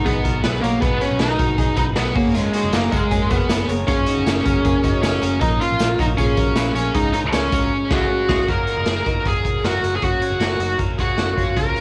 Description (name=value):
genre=jangly indie pop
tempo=156 BPM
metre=4/4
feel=straight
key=Db mixolydian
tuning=A4 = 439 Hz
part: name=high-gain lead guitar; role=melody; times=0.0-11.8 s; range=Ab3 to Bb4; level=-23 LUFS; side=equal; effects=distortion, cassette tape
part: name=biting overdriven guitar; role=accompaniment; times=0.0-11.8 s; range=Bb2 to Ab4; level=-35 LUFS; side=equal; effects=none
part: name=soft electric-piano-like synth keys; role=accompaniment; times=0.0-8.5 s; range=Ab3 to Db5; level=-31 LUFS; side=equal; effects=chorus, cassette tape
part: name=twelve-string electric guitar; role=arpeggios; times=0.0-11.8 s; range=Ab3 to Db5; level=-31 LUFS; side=equal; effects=subtle chorus, cassette tape
part: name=vintage muted fingered electric bass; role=bass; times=0.1-11.7 s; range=F1 to Db2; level=-28 LUFS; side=equal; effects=none
part: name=raw garage drum kit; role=drums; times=0.1-11.8 s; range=crash cymbal, hi-hat, kick drum, snare drum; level=-24 LUFS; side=equal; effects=none
part: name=tambourine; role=percussion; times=2.4-7.6 s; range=none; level=-45 LUFS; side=equal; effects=none
room=light reverb, small room ambience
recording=home recording on cassette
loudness=-19 LUFS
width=mono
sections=0.0-8.5 A section; 8.5-11.8 B section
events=band accent 7.7-8.5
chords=0.0 Cb6; 2.2 Gbadd9; 5.4 Bbm; 7.0 Db; 8.5 Gbmaj7